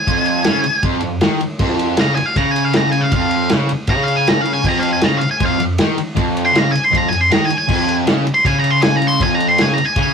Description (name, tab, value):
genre	garage rock duo or trio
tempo	158 BPM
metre	4/4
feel	straight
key	F minor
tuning	A4 = 440 Hz
part	octave-fuzz lead guitar	melody	0.0-10.1 s	F5 to C6	-17 LUFS	equal	distortion
part	fuzz guitar	riff	0.1-10.1 s	F2 to Eb3	-17 LUFS	equal	distortion
part	vintage drum kit	drums	0.1-10.1 s	crash cymbal, kick drum, ride cymbal, snare drum	-19 LUFS	equal	none
room	moderate booth ambience, RT60 0.3 s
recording	rough rehearsal-room recording, warm saturation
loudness	-13 LUFS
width	side -6 dB against mid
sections	0.0-10.1 A section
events	lead electric guitar solo 0.0-10.1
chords	0.0 Fm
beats	| 0.07 0.46 0.84 1.22 | 1.60 1.98 2.36 2.74 | 3.12 3.50 3.89 4.27 | 4.65 5.03 5.41 5.79 | 6.17 6.55 6.93 7.31 | 7.70 8.07 8.46 8.83 | 9.21 9.59 9.97